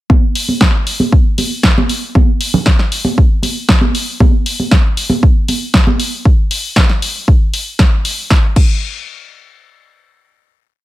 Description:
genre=nu-disco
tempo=117 BPM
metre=4/4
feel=straight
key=none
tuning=none
part: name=electronic kick drum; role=drums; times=0.1-8.7 s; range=none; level=-10 LUFS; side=equal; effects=none
part: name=congas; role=percussion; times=0.1-6.0 s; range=none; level=-17 LUFS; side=right 2 dB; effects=none
part: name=house drum kit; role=drums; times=0.4-8.7 s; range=crash cymbal, hi-hat, snare drum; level=-16 LUFS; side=equal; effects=none
room=little or no reverb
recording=none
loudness=-10 LUFS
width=side -16 dB against mid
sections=0.1-8.3 drop; 8.3-10.8 final hit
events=drop 0.1-8.3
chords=none

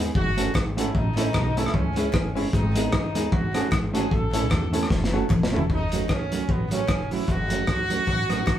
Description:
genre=ska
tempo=151 BPM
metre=4/4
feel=swing 57% on 8ths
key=F# dorian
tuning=A4 = 443 Hz
part: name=mellow electric guitar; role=accompaniment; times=0.0-8.4 s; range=F#3 to A4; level=-28 LUFS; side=right 4 dB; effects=tape echo
part: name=bright upright piano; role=stabs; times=0.0-5.6 s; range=B3 to A4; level=-32 LUFS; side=left 3 dB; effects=none
part: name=upright bass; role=bass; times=0.0-8.6 s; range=E1 to E2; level=-29 LUFS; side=equal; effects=none
part: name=warm horn section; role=melody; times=0.2-8.6 s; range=B3 to A4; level=-29 LUFS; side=equal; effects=none
part: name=crunchy breakbeat drum kit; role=drums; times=0.2-8.6 s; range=hi-hat, kick drum, rim click, snare drum, toms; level=-24 LUFS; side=equal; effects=none
part: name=group handclap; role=percussion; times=0.5-8.6 s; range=none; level=-47 LUFS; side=left 1 dB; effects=none
room=wet studio ambience, RT60 0.5 s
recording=band playing live in one room, faint mains hum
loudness=-21 LUFS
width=side -11 dB against mid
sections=0.0-5.7 A section; 5.7-8.6 B section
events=drum fill 4.9-5.7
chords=0.2 F#m; 0.9 A; 1.7 C#m; 2.5 G#m; 3.3 F#m; 4.1 A; 4.9 F#m

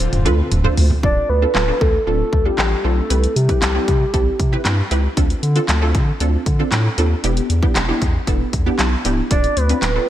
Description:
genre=dance-pop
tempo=116 BPM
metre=4/4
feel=straight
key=D dorian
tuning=A4 = 440 Hz
part: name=soft octave-layered synth lead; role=melody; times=0.0-4.9, 9.3-10.1 s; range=G4 to D5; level=-21 LUFS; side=equal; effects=chorus, phaser
part: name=wide unison pluck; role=accompaniment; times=0.0-10.1 s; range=B3 to D5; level=-23 LUFS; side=right 1 dB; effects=wide subtle chorus, sidechain pumping
part: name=airy breathy pad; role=sustained chords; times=0.0-1.0 s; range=D3 to F4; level=-30 LUFS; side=equal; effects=chorus, sidechain pumping
part: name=saturated sub bass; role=bass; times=0.0-10.0 s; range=C#1 to D3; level=-18 LUFS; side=equal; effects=sidechain pumping
part: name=pop drum kit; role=drums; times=0.0-9.9 s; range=handclaps, hi-hat, kick drum, snare drum, toms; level=-19 LUFS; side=equal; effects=gated reverb
room=light reverb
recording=bright 1980s-style digital production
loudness=-15 LUFS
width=side -12 dB against mid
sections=0.0-1.0 A section; 1.0-10.1 B section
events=drum fill 0.0-1.0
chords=0.0 Dm7; 3.1 Cmaj7; 5.2 Dm7; 7.2 Em7; 9.3 Dm7

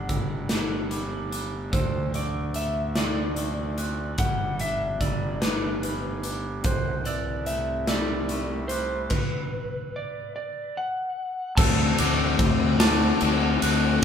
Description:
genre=post-rock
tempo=49 BPM (dotted quarters)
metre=6/8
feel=straight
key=unclear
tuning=A4 = 441 Hz
part: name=electric slide guitar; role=melody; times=0.0-14.0 s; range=B4 to A5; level=-32 LUFS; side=right 1 dB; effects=none
part: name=glockenspiel with soft plastic mallets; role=arpeggios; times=0.0-14.0 s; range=D6 to G7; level=-36 LUFS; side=right 4 dB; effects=none
part: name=twangy electric guitar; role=arpeggios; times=0.0-9.1 s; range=C3 to D4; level=-37 LUFS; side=left 1 dB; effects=none
part: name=fuzz fingered electric bass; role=bass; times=0.0-14.0 s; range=G1 to D2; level=-30 LUFS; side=equal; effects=overdrive
part: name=big rock drum kit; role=drums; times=0.1-14.0 s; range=crash cymbal, hi-hat, kick drum, ride cymbal, snare drum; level=-26 LUFS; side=equal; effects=none
part: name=overdriven electric guitar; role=riff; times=11.6-14.0 s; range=D3 to F#4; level=-23 LUFS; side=left 7 dB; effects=none
room=moderate large studio reverb, RT60 1.2 s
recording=band playing live in one room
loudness=-23 LUFS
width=side -8 dB against mid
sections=0.0-11.6 A section; 11.6-14.0 B section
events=stop 9.1-11.6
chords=0.0 G5; 1.7 D7; 4.2 G; 6.7 C6; 9.1 N.C.; 11.6 D7

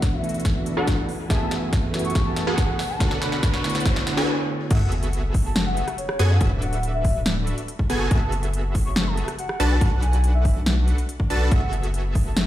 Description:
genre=future bass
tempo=141 BPM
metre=4/4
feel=half-time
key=F# minor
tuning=A4 = 440 Hz
part: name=soft octave-layered synth lead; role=melody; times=0.0-12.4 s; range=C#5 to C#6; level=-32 LUFS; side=left 1 dB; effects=chorus, phaser, sidechain pumping, digital delay
part: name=bell-like tine electric piano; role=accompaniment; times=0.0-4.7 s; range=D3 to G#5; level=-28 LUFS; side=right 2 dB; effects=fast stereo tremolo, sidechain pumping, ping-pong delay
part: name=clear studio string section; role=sustained chords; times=0.0-4.3 s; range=D2 to G#5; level=-35 LUFS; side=equal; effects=sidechain pumping
part: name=supersaw stab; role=riff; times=0.0-12.5 s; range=B3 to A5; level=-28 LUFS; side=equal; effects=sidechain pumping, low-pass filter, ping-pong delay
part: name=big-room dance drum kit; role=drums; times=0.0-12.5 s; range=crash cymbal, hi-hat, rim click, snare drum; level=-28 LUFS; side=equal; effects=overdrive, high-pass filter on hats, high-pass filter on snare, high-pass filter on cymbals
part: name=electronic kick drum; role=drums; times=0.0-12.2 s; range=none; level=-21 LUFS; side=equal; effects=none
part: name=riser, noise sweep and sub drop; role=sound effects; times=0.2-6.4 s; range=none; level=-32 LUFS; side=equal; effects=none
part: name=wide unison pluck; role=arpeggios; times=4.7-12.5 s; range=E6 to A6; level=-35 LUFS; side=right 1 dB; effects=sidechain pumping
part: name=saturated sub bass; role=bass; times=4.7-12.5 s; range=D1 to F#2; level=-22 LUFS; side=equal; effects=sidechain pumping
room=light reverb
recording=played on a big sound system in a bare room, large studio reverb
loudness=-20 LUFS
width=side -13 dB against mid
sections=0.0-4.7 A section; 4.7-12.5 B section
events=build-up 0.0-4.7; drum fill 0.0-4.3; filter sweep on string section 0.0-4.7; riser 0.2-4.3; noise sweep 3.0-4.7; stop 4.3-4.7; drop 4.7-12.5; impact 4.7-6.4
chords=0.0 D69; 1.1 F#m11; 2.8 Bm7; 4.7 F#m11; 6.4 D69; 7.9 F#m11; 9.6 Bm7; 11.5 F#m11

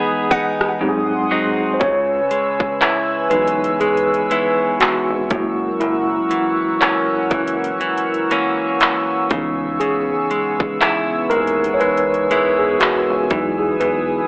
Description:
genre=contemporary R&B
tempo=60 BPM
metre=4/4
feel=swing 58% on 16ths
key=C# dorian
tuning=A4 = 441 Hz
part: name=mellow tine electric piano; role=accompaniment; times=0.0-14.3 s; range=E3 to C#5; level=-22 LUFS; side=equal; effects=none
part: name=chorused pulse-width pad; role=sustained chords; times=0.0-14.3 s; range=B3 to E6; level=-25 LUFS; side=equal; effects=sidechain pumping
part: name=direct-recorded clean electric guitar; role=arpeggios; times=0.0-14.3 s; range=F#2 to G#4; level=-25 LUFS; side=equal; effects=tape echo
part: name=glassy wavetable pluck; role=texture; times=0.0-1.3 s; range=F#5 to G#5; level=-26 LUFS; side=equal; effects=chorus, tape echo
part: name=trap drum kit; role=drums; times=0.3-14.1 s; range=handclaps, hi-hat, kick drum, rim click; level=-22 LUFS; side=equal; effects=overdrive
part: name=rubbery square bass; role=bass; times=1.8-14.2 s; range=F#1 to E2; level=-29 LUFS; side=equal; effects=none
room=moderate plate reverb, RT60 2.4 s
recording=dry, gritty hardware recording, AM radio sound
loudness=-18 LUFS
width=mono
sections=0.0-1.8 A section; 1.8-14.3 B section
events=drums muted 0.8-1.8; tine electric piano solo 1.8-14.3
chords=0.0 Emaj7; 0.8 G#7; 1.8 C#m7; 5.3 F#7; 9.3 C#m7; 13.3 Emaj7

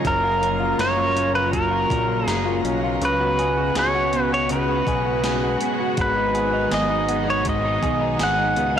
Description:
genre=dream pop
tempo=81 BPM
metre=4/4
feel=straight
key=F# major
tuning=A4 = 440 Hz
part: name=string machine, full ensemble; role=sustained chords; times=0.0-8.8 s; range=C#3 to F#4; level=-26 LUFS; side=right 1 dB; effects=ensemble chorus
part: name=semi-hollow electric guitar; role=arpeggios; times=0.0-8.8 s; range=G#2 to A#4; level=-26 LUFS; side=left 2 dB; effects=wide subtle chorus, digital delay
part: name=fat analog bass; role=bass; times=0.0-8.8 s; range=F#1 to C#2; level=-28 LUFS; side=equal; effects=transformer saturation
part: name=gated 80s digital drum machine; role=drums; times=0.0-8.7 s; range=hi-hat, kick drum, snare drum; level=-30 LUFS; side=equal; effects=gated reverb, gated reverb snare, overdrive
part: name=pedal steel guitar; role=melody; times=0.1-8.8 s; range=A#4 to F#5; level=-22 LUFS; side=equal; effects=digital delay
room=moderate shimmer reverb, RT60 6.8 s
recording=blown-out, overdriven recording, overdrive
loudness=-18 LUFS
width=side -9 dB against mid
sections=0.0-8.8 A section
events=none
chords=0.1 F#maj7; 3.0 C#7sus4; 6.0 G#m7

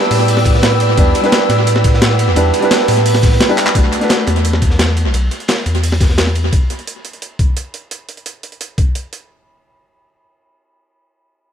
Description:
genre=liquid drum and bass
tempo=173 BPM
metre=4/4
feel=straight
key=B minor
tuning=A4 = 440 Hz
part: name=felt-muted upright piano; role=accompaniment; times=0.0-5.2 s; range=G3 to B4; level=-18 LUFS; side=left 1 dB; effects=low-pass filter, tape echo
part: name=dark studio string section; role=sustained chords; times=0.0-3.7 s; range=D5 to E6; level=-21 LUFS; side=left 4 dB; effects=none
part: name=vibraphone with medium mallets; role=arpeggios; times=0.0-3.8 s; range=B3 to B5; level=-18 LUFS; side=right 7 dB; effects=tape echo
part: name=crunchy breakbeat drum kit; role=drums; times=0.0-6.4 s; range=hi-hat, ride cymbal, snare drum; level=-24 LUFS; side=equal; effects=high-pass filter on cymbals, high-pass filter on hats, high-pass filter on snare, high-pass filter on room
part: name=warm sub bass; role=bass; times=0.1-6.5 s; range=B1 to A2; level=-15 LUFS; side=left 1 dB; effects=none
part: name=breakbeat sampler-style drum kit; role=drums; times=0.1-9.2 s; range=handclaps, hi-hat, ride cymbal, snare drum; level=-18 LUFS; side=equal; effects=tape echo
part: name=electronic kick drum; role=drums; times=0.5-8.8 s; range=none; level=-14 LUFS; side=left 1 dB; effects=none
room=light reverb, small room ambience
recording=echo-heavy mix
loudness=-11 LUFS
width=side -8 dB against mid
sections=0.0-3.8 A section; 3.8-9.3 B section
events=drop 0.0-3.8; drum fill 3.6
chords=0.0 Em7; 3.8 Bm7

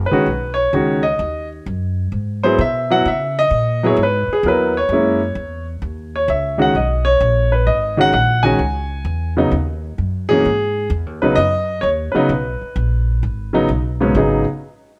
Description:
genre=jazz piano trio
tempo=130 BPM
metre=4/4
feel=swing 66% on 8ths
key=G# minor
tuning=A4 = 440 Hz
part: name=upright bass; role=bass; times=0.0-14.4 s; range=G#1 to C#3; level=-23 LUFS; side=equal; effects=none
part: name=warm baby grand piano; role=melody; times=0.1-14.4 s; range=G#2 to G#5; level=-18 LUFS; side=equal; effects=plate reverb
room=moderate studio reverb, RT60 0.7 s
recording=none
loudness=-18 LUFS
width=mono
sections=0.0-14.1 A section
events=none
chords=0.0 G#m7; 1.2 D#m; 2.1 G#m7b13; 3.1 C#m9; 4.9 F#7(no3); 6.8 Bmaj7; 8.6 C#m; 9.5 D#m; 10.5 G#m7

